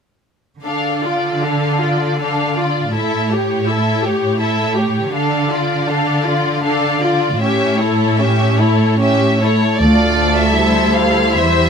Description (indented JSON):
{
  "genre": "classical, slow romantic movement for string orchestra",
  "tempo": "71-84 BPM",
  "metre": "3/4",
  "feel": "rubato",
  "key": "D minor",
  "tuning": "A4 = 440 Hz",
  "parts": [
    { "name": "dark studio violin section", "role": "second line", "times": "0.6-11.7 s", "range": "F4 to D5", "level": "-20 LUFS", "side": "left 2 dB", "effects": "none" },
    { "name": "rich studio cello section", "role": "bass", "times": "0.6-11.7 s", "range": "D2 to D3", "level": "-18 LUFS", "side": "right 1 dB", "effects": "none" },
    { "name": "rich studio violin section", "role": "melody", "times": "0.7-11.7 s", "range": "C#5 to F5", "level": "-21 LUFS", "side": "equal", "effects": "none" },
    { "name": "rich studio viola section", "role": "accompaniment", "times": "0.7-11.7 s", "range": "G3 to G4", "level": "-19 LUFS", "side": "left 1 dB", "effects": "none" },
    { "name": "warm studio double bass section", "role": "bass", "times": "9.8-10.6 s", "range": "D2", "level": "-18 LUFS", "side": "right 2 dB", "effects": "none" }
  ],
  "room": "light reverb",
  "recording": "close, detailed microphones",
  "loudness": "-13 LUFS",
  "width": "side -6 dB against mid",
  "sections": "0.6-9.8 A section; 9.8-11.7 B section",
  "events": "none",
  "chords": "0.6 Dm; 2.9 A7; 5.1 Dm; 7.4 A7; 9.8 Dm"
}